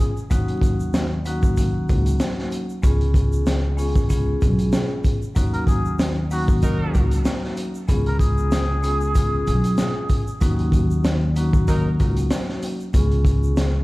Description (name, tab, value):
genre	hip hop, boom-bap hip-hop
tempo	95 BPM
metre	4/4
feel	swing 56% on 16ths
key	Eb minor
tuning	A4 = 440 Hz
part	trumpet with cup mute	melody	0.0-0.3, 5.5-10.4 s	Gb4 to Bb4	-30 LUFS	equal	high-pass filter, low-pass filter, tape echo
part	vibraphone with soft mallets	accompaniment	0.0-13.8 s	Gb3 to Ab4	-27 LUFS	left 1 dB	high-pass filter, low-pass filter
part	tube shaker	percussion	0.2-13.7 s	none	-45 LUFS	right 4 dB	none
part	upright bass	bass	0.3-13.8 s	Cb2 to Eb2	-22 LUFS	equal	none
part	crunchy breakbeat drum kit	drums	0.3-13.7 s	hi-hat, kick drum, snare drum	-21 LUFS	equal	none
part	warm horn section	stabs	6.6-7.0, 11.7-11.9 s	Gb3 to Bb4	-33 LUFS	right 2 dB	high-pass filter, low-pass filter, tape echo
room	small room ambience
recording	played on a big sound system in a bare room, large studio reverb, vinyl crackle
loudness	-18 LUFS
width	side -20 dB against mid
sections	0.0-13.8 A section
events	none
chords	0.3 Ebm7; 2.8 Db7; 5.4 Ebm7; 7.9 Db7; 10.4 Ebm7; 12.9 Db7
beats	| 0.31 0.94 1.57 2.20 | 2.83 3.47 4.10 4.73 | 5.36 5.99 6.62 7.26 | 7.89 8.52 9.15 9.78 | 10.41 11.04 11.68 12.31 | 12.94 13.57